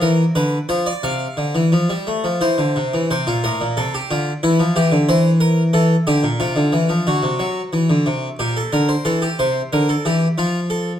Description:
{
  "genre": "classical, baroque-style two-part invention for harpsichord",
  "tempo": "90 BPM",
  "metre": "3/4",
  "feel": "straight",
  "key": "F major",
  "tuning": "A4 = 440 Hz",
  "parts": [
    { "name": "harpsichord", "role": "solo", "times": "0.0-11.0 s", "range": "A2 to F5", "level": "-16 LUFS", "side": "equal", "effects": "none" }
  ],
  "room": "moderate stone room reverb, RT60 1.1 s",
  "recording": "none",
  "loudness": "-16 LUFS",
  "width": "side -10 dB against mid",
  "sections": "0.0-3.1 A section; 3.1-7.1 B section; 7.1-11.0 A section",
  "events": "none",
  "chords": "0.4 Bdim/D; 1.0 F/C; 2.4 C; 3.1 F; 4.4 Dmadd9; 5.1 C7/E; 6.4 F5/C; 7.1 D7; 8.4 Gm/Bb; 9.1 C7; 10.4 F"
}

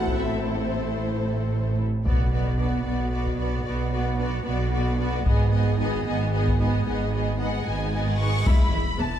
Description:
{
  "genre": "cinematic, epic orchestral film score",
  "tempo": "75 BPM (dotted quarters)",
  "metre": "6/8",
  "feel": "straight",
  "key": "unclear",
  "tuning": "A4 = 440 Hz",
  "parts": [
    { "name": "clear studio violin section", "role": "melody", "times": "0.0-9.2 s", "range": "C5 to C#6", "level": "-34 LUFS", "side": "left 2 dB", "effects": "none" },
    { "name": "warm symphonic violin section", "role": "second line", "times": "0.0-9.2 s", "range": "E4 to C#6", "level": "-32 LUFS", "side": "left 3 dB", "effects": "none" },
    { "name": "rich symphonic viola section", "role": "accompaniment", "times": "0.0-9.1 s", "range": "E3 to E4", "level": "-32 LUFS", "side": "right 1 dB", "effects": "none" },
    { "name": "mellow French horn section", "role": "sustained chords", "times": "0.0-9.2 s", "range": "G#3 to F#4", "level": "-38 LUFS", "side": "left 4 dB", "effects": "none" },
    { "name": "rich studio cello section", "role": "bass", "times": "0.0-9.1 s", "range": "E2 to B2", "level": "-28 LUFS", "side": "right 3 dB", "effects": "none" },
    { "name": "rich symphonic double bass section", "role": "bass", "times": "0.0-9.1 s", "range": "E1 to B1", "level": "-28 LUFS", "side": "right 1 dB", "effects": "none" },
    { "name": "solo taiko drums", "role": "drums", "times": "0.1-9.0 s", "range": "none", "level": "-25 LUFS", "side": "left 1 dB", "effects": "none" },
    { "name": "impact and cymbal swell", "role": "sound effects", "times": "2.1-3.7, 7.9-9.2 s", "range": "none", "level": "-34 LUFS", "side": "left 1 dB", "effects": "none" }
  ],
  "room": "moderate scoring stage reverb, RT60 1.6 s",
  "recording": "dark, warm production",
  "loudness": "-22 LUFS",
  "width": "side -10 dB against mid",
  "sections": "0.0-2.1 A section; 2.1-8.5 B section",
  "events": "impact 2.1-3.7, 8.5-9.2; cymbal swell 7.9-8.5",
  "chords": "0.0 Am; 2.1 Bm; 5.3 G#m; 8.5 E"
}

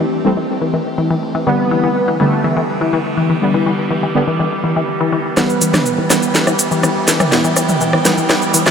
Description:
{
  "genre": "melodic techno",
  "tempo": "123 BPM",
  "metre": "4/4",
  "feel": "straight",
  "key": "E minor",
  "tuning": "A4 = 437 Hz",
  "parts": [
    { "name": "evolving wavetable pad", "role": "sustained chords", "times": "0.0-8.7 s", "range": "D3 to G4", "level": "-21 LUFS", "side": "right 2 dB", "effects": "phaser, built-in reverb" },
    { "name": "tight sequenced synth", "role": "arpeggios", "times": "0.0-8.7 s", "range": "E3", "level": "-18 LUFS", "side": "left 3 dB", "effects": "chorus, ping-pong delay" },
    { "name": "synth brass stab", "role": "stabs", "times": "0.0-8.1 s", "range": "D3 to C4", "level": "-19 LUFS", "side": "equal", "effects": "chorus, ping-pong delay" },
    { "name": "wide unison lead", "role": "melody", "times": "1.5-6.6 s", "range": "A3 to B3", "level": "-23 LUFS", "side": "right 2 dB", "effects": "none" },
    { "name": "big bright polysynth", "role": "second line", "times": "5.4-6.6 s", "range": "B4", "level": "-26 LUFS", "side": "right 4 dB", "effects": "analog chorus, ping-pong delay" },
    { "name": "techno drum kit", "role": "drums", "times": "5.4-8.7 s", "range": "hi-hat, rim click, shaker, snare drum, toms", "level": "-15 LUFS", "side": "equal", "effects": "overdrive" }
  ],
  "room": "wet huge ambient reverb, RT60 8.4 s",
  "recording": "dreamy mix soaked in reverb",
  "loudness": "-13 LUFS",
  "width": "side -7 dB against mid",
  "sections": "0.0-5.4 A section; 5.4-8.7 B section",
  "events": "filter sweep on synth arpeggio sound 0.0-5.4, 5.4-8.7; filter sweep on ambient pad 0.0-5.4; build-up 5.4-8.7; drum fill 5.4-8.7",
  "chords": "0.0 Am7; 1.5 G; 5.4 Em"
}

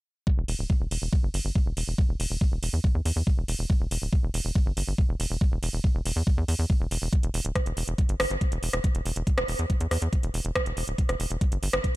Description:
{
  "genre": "psychedelic trance",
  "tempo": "140 BPM",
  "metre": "4/4",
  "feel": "straight",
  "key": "E minor",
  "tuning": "A4 = 439 Hz",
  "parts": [
    { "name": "electronic kick drum", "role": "drums", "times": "0.3-11.9 s", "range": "none", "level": "-24 LUFS", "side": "equal", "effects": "none" },
    { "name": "tight sequencer bass", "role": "bass", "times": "0.4-11.8 s", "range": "D1 to E2", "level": "-28 LUFS", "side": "equal", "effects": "none" },
    { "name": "garage drum kit", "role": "drums", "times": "0.5-11.9 s", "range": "hi-hat, rim click", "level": "-31 LUFS", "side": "right 1 dB", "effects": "none" }
  ],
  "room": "little or no reverb",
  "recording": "none",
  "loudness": "-24 LUFS",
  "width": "side -19 dB against mid",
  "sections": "0.3-12.0 A section",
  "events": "none",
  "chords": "none"
}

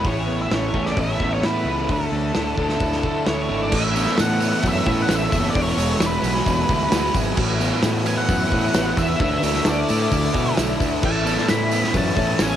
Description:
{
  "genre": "rock, shoegaze and dream pop",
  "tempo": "132 BPM",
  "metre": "4/4",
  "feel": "straight",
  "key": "A major",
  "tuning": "A4 = 441 Hz",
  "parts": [
    { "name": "octave-fuzz lead guitar", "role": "melody", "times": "0.0-12.6 s", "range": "A4 to B5", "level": "-26 LUFS", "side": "equal", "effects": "distortion, cassette tape, tape echo" },
    { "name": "soft additive organ-like pad", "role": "sustained chords", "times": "0.0-12.6 s", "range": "D4 to B5", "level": "-28 LUFS", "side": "left 2 dB", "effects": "ensemble chorus, built-in reverb" },
    { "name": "direct-recorded clean electric guitar", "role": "arpeggios", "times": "0.0-3.7, 11.0-12.6 s", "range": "E3 to A4", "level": "-33 LUFS", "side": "left 6 dB", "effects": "none" },
    { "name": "crunchy overdriven guitar", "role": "riff", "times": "0.0-12.6 s", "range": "E2 to E4", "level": "-26 LUFS", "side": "right 7 dB", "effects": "reverse reverb" },
    { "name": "thick fuzz guitar", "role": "riff", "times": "0.0-12.6 s", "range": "E2 to E4", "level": "-27 LUFS", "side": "left 8 dB", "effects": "distortion, analog chorus" },
    { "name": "fuzz fingered electric bass", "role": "bass", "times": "0.0-12.6 s", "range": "E1 to D3", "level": "-25 LUFS", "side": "equal", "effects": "overdrive" },
    { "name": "loose indie drum kit", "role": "drums", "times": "0.0-12.5 s", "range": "crash cymbal, hi-hat, kick drum, snare drum", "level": "-24 LUFS", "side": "equal", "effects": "cassette tape" },
    { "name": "tambourine", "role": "percussion", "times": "4.0-12.5 s", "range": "none", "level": "-37 LUFS", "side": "right 12 dB", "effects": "none" }
  ],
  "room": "light reverb, small room ambience",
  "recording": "home recording on cassette",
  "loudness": "-18 LUFS",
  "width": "side -10 dB against mid",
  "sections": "0.0-3.7 A section; 3.7-12.6 B section",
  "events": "none",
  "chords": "0.0 Aadd9; 1.9 Dsus2; 3.7 Aadd9; 5.6 Eadd9; 7.4 Aadd9; 9.2 Dsus2; 11.0 Aadd9"
}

